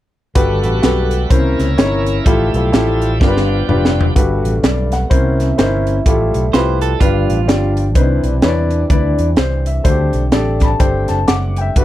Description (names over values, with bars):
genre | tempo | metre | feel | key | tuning
uptempo gospel | 126 BPM | 4/4 | swing 60% on 8ths | G major | A4 = 440 Hz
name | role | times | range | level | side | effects
warm concert grand piano | accompaniment | 0.4-11.8 s | G2 to D6 | -17 LUFS | left 2 dB | none
mellow French horn section | sustained chords | 0.4-11.8 s | C3 to E5 | -26 LUFS | right 3 dB | none
overdriven tonewheel organ | sustained chords | 0.4-4.1 s | F3 to F#5 | -25 LUFS | right 5 dB | fast rotary speaker
fingered electric bass | bass | 0.4-11.8 s | F1 to E2 | -17 LUFS | equal | none
crisp fusion drum kit | drums | 0.4-11.8 s | hi-hat, kick drum, snare drum, toms | -16 LUFS | equal | none
clean electric guitar | second line | 6.5-7.7 s | F4 to C5 | -21 LUFS | right 12 dB | none
room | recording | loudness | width
little or no reverb | none | -12 LUFS | side -14 dB against mid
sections
0.4-4.2 A section; 4.2-11.8 B section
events
drum fill 3.2-4.2; grand piano fill 10.3-11.8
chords
0.4 Gmaj9; 1.3 C7b9; 2.3 Fmaj9/A; 3.2 G7; 4.2 Gmaj9; 5.1 C7b9; 6.1 Fmaj9/A; 7.0 G7; 8.0 Cmaj9; 9.9 D7sus4